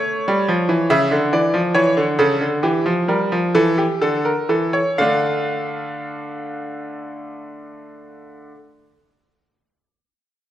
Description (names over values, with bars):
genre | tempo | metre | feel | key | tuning
classical, baroque-style two-part invention for grand piano | 40-49 BPM (dotted quarters) | 12/8 | straight | D minor | A4 = 442 Hz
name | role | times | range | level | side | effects
bright concert grand piano | solo | 0.0-8.5 s | C#3 to F5 | -17 LUFS | equal | none
room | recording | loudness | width
wet recital hall reverb, RT60 1.5 s | none | -16 LUFS | side -12 dB against mid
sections
0.0-5.0 A section; 5.0-10.5 B section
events
slowing down 0.0-5.0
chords
0.0 A7; 5.0 Dm